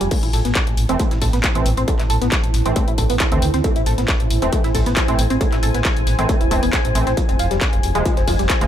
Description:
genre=driving peak-time techno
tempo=136 BPM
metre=4/4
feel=straight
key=A harmonic minor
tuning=A4 = 441 Hz
part: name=tight sequenced synth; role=riff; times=0.0-8.4 s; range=F3 to A4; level=-24 LUFS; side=equal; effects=chorus, phaser, overdrive, cassette tape, sidechain pumping, digital delay
part: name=growling FM bass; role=bass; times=0.0-8.7 s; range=D#1 to D2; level=-21 LUFS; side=equal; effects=sidechain pumping
part: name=dusty soul sampler-style drum kit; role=drums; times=0.0-8.6 s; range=hi-hat, snare drum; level=-35 LUFS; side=right 2 dB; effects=high-pass filter on hats, high-pass filter on snare
part: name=punchy analog drum machine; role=drums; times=0.0-8.7 s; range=crash cymbal, handclaps, hi-hat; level=-25 LUFS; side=left 2 dB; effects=overdrive, sidechain pumping on hats, sidechain pumping on cymbals
part: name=deep dark ambient pad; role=texture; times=0.0-8.7 s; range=E4 to A5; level=-26 LUFS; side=equal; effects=chorus, built-in reverb, sidechain pumping
part: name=electronic kick drum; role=drums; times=0.1-8.6 s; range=none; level=-19 LUFS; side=equal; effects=distortion
part: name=sync-sweep polysynth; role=stabs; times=0.9-8.7 s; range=C3 to C4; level=-26 LUFS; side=right 3 dB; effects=chorus, sidechain pumping, digital delay
room=little or no reverb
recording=none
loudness=-16 LUFS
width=side -10 dB against mid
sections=0.0-8.7 A section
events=none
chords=0.1 Am; 7.2 Fm

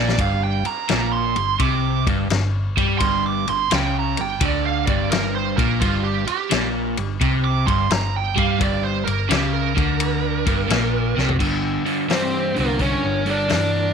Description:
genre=blues rock power trio and southern rock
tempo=86 BPM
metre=4/4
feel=swing 67% on 8ths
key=G minor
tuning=A4 = 439 Hz
part: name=bluesy overdriven lead guitar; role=second line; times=0.0-13.9 s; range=F4 to D6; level=-24 LUFS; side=right 12 dB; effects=distortion
part: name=crunchy overdriven guitar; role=riff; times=0.0-13.9 s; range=G2 to G3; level=-22 LUFS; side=equal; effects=none
part: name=hollow-body short-scale fingered electric bass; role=bass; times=0.0-13.9 s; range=G1 to G2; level=-25 LUFS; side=equal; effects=none
part: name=vintage drum kit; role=drums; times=0.1-13.7 s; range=crash cymbal, hi-hat, kick drum, ride cymbal, snare drum, toms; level=-24 LUFS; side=left 3 dB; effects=none
part: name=octave-fuzz lead guitar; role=melody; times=12.1-13.9 s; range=Bb3 to D4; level=-22 LUFS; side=left 1 dB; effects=distortion, slapback echo
room=small room ambience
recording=1960s-style stereo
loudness=-18 LUFS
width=side -6 dB against mid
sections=0.0-11.4 A section; 11.4-13.9 B section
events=drum fill 0.0, 11.1-11.4; lead electric guitar solo 0.0-11.4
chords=0.0 Gm

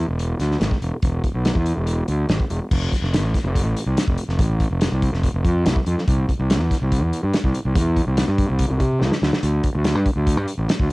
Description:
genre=math rock and midwest emo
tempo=143 BPM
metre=4/4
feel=straight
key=unclear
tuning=A4 = 440 Hz
part: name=fuzz fingered electric bass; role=bass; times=0.0-10.9 s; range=E1 to C3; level=-20 LUFS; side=equal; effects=overdrive
part: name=loose indie drum kit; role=drums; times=0.2-10.9 s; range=crash cymbal, hi-hat, kick drum, snare drum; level=-21 LUFS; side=equal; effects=cassette tape
room=little or no reverb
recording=home recording on cassette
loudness=-18 LUFS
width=side -23 dB against mid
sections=0.0-2.7 A section; 2.7-10.9 B section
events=drum fill 9.0-9.4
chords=none

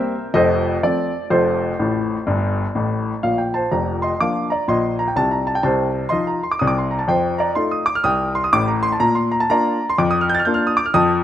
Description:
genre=jazz, stride piano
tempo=124 BPM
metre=4/4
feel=swing 63% on 8ths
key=Bb major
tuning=A4 = 440 Hz
part: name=clear grand piano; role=solo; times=0.0-11.2 s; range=F1 to A6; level=-17 LUFS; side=equal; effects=none
room=light reverb, small room ambience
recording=rough home demo mix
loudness=-17 LUFS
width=side -11 dB against mid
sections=0.0-3.2 A section; 3.2-11.2 B section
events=grand piano fill 1.8-3.2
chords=0.3 F7; 1.3 F; 3.2 Bb; 5.2 F7/C; 7.1 F9; 9.0 Bb

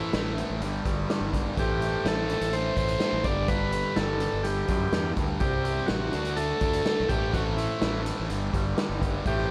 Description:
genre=psychedelic rock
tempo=125 BPM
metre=4/4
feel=straight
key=unclear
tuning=A4 = 441 Hz
part: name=combo organ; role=melody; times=0.0-9.5 s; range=E4 to D5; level=-32 LUFS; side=equal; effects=digital delay
part: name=pedal harmonium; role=sustained chords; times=0.0-9.5 s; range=E4 to C6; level=-39 LUFS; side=equal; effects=none
part: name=thick fuzz guitar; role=riff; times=0.0-9.5 s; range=G2 to D4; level=-34 LUFS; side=equal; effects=distortion, phaser
part: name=fuzz fingered electric bass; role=bass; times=0.1-9.5 s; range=G1 to F#2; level=-34 LUFS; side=equal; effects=overdrive
part: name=raw garage drum kit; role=drums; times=0.1-9.4 s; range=hi-hat, kick drum, snare drum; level=-32 LUFS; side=equal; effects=none
room=light reverb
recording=none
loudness=-27 LUFS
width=mono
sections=0.0-9.5 A section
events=none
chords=0.0 Am; 0.6 G; 1.6 Am; 3.3 G; 5.4 C; 6.1 D; 7.1 Am; 8.3 G

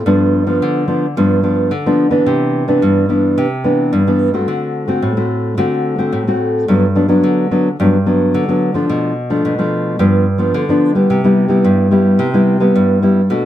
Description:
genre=samba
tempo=109 BPM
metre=4/4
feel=straight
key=unclear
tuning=A4 = 439 Hz
part: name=nylon-string guitar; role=solo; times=0.0-13.5 s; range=G2 to F#4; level=-12 LUFS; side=equal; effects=none
room=moderate studio reverb, RT60 0.6 s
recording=none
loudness=-12 LUFS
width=side -12 dB against mid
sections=0.0-11.1 A section; 11.1-13.5 B section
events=none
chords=0.1 G7; 2.3 Cmaj9; 4.5 D7; 6.7 Gmaj7; 8.9 Bm7b5; 10.0 G7; 11.1 Cmaj7

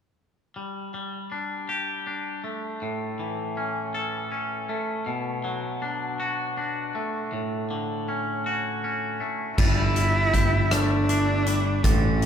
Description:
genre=post-rock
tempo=53 BPM (dotted quarters)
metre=6/8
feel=straight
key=G lydian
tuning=A4 = 439 Hz
part: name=twangy electric guitar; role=arpeggios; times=0.6-12.3 s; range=A2 to A4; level=-28 LUFS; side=left 1 dB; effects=spring reverb
part: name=rich cello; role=melody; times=9.6-12.3 s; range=C#4 to E4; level=-25 LUFS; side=right 1 dB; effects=none
part: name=glockenspiel with hard plastic mallets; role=arpeggios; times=9.6-12.3 s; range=D6 to A6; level=-34 LUFS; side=right 3 dB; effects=none
part: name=growling picked electric bass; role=bass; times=9.6-12.3 s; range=G1 to A1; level=-24 LUFS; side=equal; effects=overdrive
part: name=huge arena drum kit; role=drums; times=9.6-12.3 s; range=crash cymbal, hi-hat, kick drum, rim click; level=-24 LUFS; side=equal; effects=none
room=wet cathedral reverb, RT60 4.6 s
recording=recorded in a church or concert hall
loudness=-24 LUFS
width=side -8 dB against mid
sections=0.6-9.6 A section; 9.6-12.3 B section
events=none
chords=0.6 Gsus2; 2.8 A; 5.1 Bm7; 7.3 Dmaj7/A; 9.6 Gsus2

